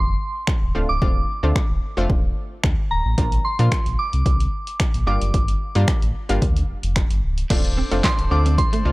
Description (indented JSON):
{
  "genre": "dance-pop",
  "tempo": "111 BPM",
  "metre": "4/4",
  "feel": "straight",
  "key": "D minor",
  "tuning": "A4 = 441 Hz",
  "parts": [
    { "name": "soft synth bell", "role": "melody", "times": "0.0-8.9 s", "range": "Bb5 to D6", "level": "-26 LUFS", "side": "right 1 dB", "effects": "chorus" },
    { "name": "sub bass with octave", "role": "bass", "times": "0.0-8.9 s", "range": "C#1 to Bb2", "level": "-21 LUFS", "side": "equal", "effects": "sidechain pumping" },
    { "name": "punchy analog drum machine", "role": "drums", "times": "0.5-8.8 s", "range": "crash cymbal, finger snaps, handclaps, hi-hat, kick drum, snare drum", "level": "-21 LUFS", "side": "equal", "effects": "none" },
    { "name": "analog pluck", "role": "accompaniment", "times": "0.7-8.9 s", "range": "F3 to F4", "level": "-27 LUFS", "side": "equal", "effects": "chorus, sidechain pumping" },
    { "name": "pipe organ, cornet", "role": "sustained chords", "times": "7.5-8.9 s", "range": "D4 to D5", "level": "-33 LUFS", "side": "left 2 dB", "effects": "sidechain pumping" },
    { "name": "electric guitar at the edge of break-up", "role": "riff", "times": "7.5-8.9 s", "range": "A3 to D4", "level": "-29 LUFS", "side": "right 3 dB", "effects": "ensemble chorus" }
  ],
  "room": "digital ambience",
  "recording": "dry, gritty hardware recording, transformer saturation",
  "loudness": "-18 LUFS",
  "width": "side -21 dB against mid",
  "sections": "0.0-7.5 A section; 7.5-8.9 B section",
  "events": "none",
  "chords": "0.0 Dm7; 3.2 Bb; 5.1 Gm7; 7.5 Dm7",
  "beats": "0.48 | 1.02 1.56 2.10 2.64 | 3.18 3.72 4.26 4.80 | 5.34 5.88 6.42 6.96 | 7.50 8.04 8.59"
}